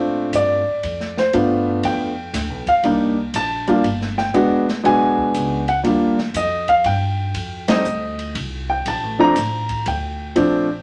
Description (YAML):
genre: jazz piano trio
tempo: 120 BPM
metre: 3/4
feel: swing 67% on 8ths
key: Bb major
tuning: A4 = 441 Hz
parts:
  - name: warm grand piano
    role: melody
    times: 0.0-10.7 s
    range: F3 to Bb5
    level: -20 LUFS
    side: equal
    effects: none
  - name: upright bass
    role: bass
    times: 0.0-10.8 s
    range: E1 to Bb2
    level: -30 LUFS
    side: equal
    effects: none
  - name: open jazz drum kit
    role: drums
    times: 0.3-10.5 s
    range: hi-hat, kick drum, ride cymbal, snare drum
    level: -32 LUFS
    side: equal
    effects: none
room: wet club reverb, RT60 0.8 s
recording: none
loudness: -19 LUFS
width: mono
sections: 0.0-10.8 A section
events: band accent 7.6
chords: 0.0 Bbmaj7; 1.3 G7; 2.8 C7(no3); 4.3 E9; 5.8 Ebmaj7; 7.3 F7(no3); 8.9 Bbmaj7